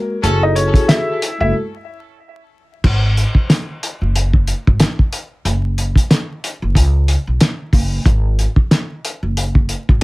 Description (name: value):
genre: hip hop, boom-bap hip-hop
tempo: 92 BPM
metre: 4/4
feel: swing 59% on 16ths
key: unclear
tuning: A4 = 440 Hz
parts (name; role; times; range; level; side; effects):
- vibraphone with soft mallets; accompaniment; 0.0-1.5 s; G#3 to A#4; -20 LUFS; left 2 dB; cassette tape, high-pass filter, low-pass filter
- upright bass; bass; 0.2-10.0 s; F#1 to C#2; -16 LUFS; equal; none
- cloth-damped thuddy drum kit; drums; 0.2-10.0 s; crash cymbal, hi-hat, kick drum, snare drum; -14 LUFS; equal; none
- bright upright piano; melody; 0.4-1.5 s; C#4 to E5; -21 LUFS; left 1 dB; high-pass filter, low-pass filter, ping-pong delay
room: little or no reverb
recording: vinyl crackle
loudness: -13 LUFS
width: side -22 dB against mid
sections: 0.0-2.8 A section; 2.8-10.0 B section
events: break 1.5-2.8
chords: 0.2 F#m9; 1.5 N.C.; 2.8 F#sus2; 5.4 N.C.; 6.8 F#5; 8.1 F#sus2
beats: | 0.23 0.88 1.53 2.19 | 2.84 3.49 4.14 4.80 | 5.45 6.10 6.75 7.41 | 8.06 8.71 9.36 10.01